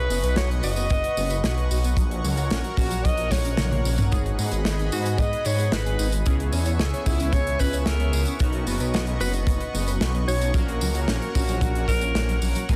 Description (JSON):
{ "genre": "synthwave", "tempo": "112 BPM", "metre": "4/4", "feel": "straight", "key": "unclear", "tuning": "A4 = 440 Hz", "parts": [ { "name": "warm alto saxophone", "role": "melody", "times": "0.0-12.4 s", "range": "E4 to D#5", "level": "-32 LUFS", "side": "equal", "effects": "tape echo" }, { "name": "chorused pulse-width pad", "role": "sustained chords", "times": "0.0-12.8 s", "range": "B3 to C#6", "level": "-35 LUFS", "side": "equal", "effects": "sidechain pumping" }, { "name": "detuned saw bass", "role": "bass", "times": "0.0-12.8 s", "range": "F#1 to G#2", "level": "-27 LUFS", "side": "equal", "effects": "chorus" }, { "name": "mellow electric guitar", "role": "riff", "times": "0.1-12.7 s", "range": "F#3 to C#5", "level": "-37 LUFS", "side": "equal", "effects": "analog chorus, tape echo" }, { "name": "modern studio drum kit", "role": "drums", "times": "0.1-12.8 s", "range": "hi-hat, snare drum, tambourine, toms", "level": "-32 LUFS", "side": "equal", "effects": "none" }, { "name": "kick drum", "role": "drums", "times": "0.9-12.8 s", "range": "none", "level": "-26 LUFS", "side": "equal", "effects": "none" }, { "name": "chorused polysynth", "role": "stabs", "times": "4.1-12.8 s", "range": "A#3 to A#4", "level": "-37 LUFS", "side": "equal", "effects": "delay" } ], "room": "light reverb", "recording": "dense, heavily limited modern master", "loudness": "-23 LUFS", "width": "mono", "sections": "0.0-12.8 A section", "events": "drum fill 3.6-4.1", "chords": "0.0 Badd9; 2.0 F#/A#; 4.1 G#m7; 6.3 C#m7; 8.4 Badd9; 10.5 F#/A#" }